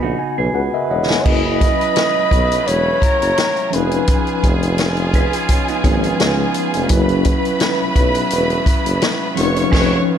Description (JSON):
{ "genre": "lush 1970s-style soul", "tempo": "85 BPM", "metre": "4/4", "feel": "swing 54% on 16ths", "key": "unclear", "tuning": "A4 = 439 Hz", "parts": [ { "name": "mellow tine electric piano", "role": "accompaniment", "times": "0.0-10.2 s", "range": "C#3 to B5", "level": "-21 LUFS", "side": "left 2 dB", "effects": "medium stereo tremolo" }, { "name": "electric guitar through a small old amp", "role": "riff", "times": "0.0-10.0 s", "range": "G#3 to B4", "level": "-24 LUFS", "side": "right 8 dB", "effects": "none" }, { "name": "warm tuba", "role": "bass", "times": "0.0-10.0 s", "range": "E1 to C#2", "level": "-21 LUFS", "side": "equal", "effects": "none" }, { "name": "breathy flugelhorn", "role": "melody", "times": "0.5-5.1 s", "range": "B4 to D#5", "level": "-19 LUFS", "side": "right 1 dB", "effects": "none" }, { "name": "vintage drum kit", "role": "drums", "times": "1.1-10.0 s", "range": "crash cymbal, hi-hat, kick drum, snare drum", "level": "-18 LUFS", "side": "equal", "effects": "none" }, { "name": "muted French horn section", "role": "sustained chords", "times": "1.2-10.2 s", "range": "C#3 to E#4", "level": "-28 LUFS", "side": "right 2 dB", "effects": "none" }, { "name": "rich studio string section", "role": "second line", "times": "1.3-10.0 s", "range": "G#4 to C#6", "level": "-22 LUFS", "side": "right 1 dB", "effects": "none" } ], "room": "light reverb", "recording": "none", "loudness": "-14 LUFS", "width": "side -9 dB against mid", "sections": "0.0-1.3 A section; 1.3-10.2 B section", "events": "tine electric piano fill 0.0-1.3; drum fill 0.0-1.3; band accent 9.7-10.2", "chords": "0.0 C#9sus4; 1.3 F#7sus4; 3.7 C#7/E#; 6.9 F#7sus4; 9.4 C#7/E#", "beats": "0.54 | 1.25 1.96 2.67 3.37 | 4.08 4.79 5.49 6.20 | 6.91 7.61 8.32 9.03 | 9.73" }